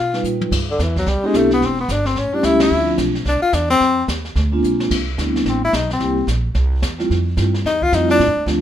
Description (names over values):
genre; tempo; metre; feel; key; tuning
jazz, small-group swing and bop; 219 BPM; 4/4; swing 61% on 8ths; C major; A4 = 440 Hz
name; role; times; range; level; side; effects
breathy tenor saxophone; melody; 0.0-8.5 s; D3 to F4; -18 LUFS; left 2 dB; none
upright bass; bass; 0.0-8.6 s; E1 to B2; -21 LUFS; right 1 dB; none
vibraphone with soft mallets; accompaniment; 0.1-8.6 s; F3 to B4; -18 LUFS; equal; none
jazz brush drum kit; drums; 0.1-8.6 s; brushed snare drum, crash cymbal, hi-hat, kick drum, ride cymbal, snare drum, toms; -26 LUFS; equal; none
room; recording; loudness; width
light reverb; minimal, uncompressed stereo recording; -15 LUFS; side -10 dB against mid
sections
0.5-8.6 A section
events
drum fill 0.2, 4.6; band accent 2.6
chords
0.0 G7alt; 0.5 Cmaj9; 1.6 Em7; 2.2 A7; 2.7 Dm7; 3.8 F5; 4.4 Bb9; 4.9 Cmaj9; 6.0 C7; 7.1 Fmaj9